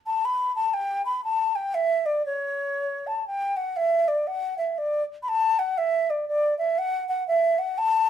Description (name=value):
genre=celtic folk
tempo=120 BPM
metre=3/4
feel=swing 61% on 8ths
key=D major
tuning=A4 = 444 Hz
part: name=baroque flute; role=solo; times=0.1-8.1 s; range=C#5 to B5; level=-22 LUFS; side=equal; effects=none
room=wet studio reverb, RT60 0.5 s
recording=band playing live in one room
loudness=-23 LUFS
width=side -9 dB against mid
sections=0.0-5.3 A section; 5.3-8.1 B section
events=none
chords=none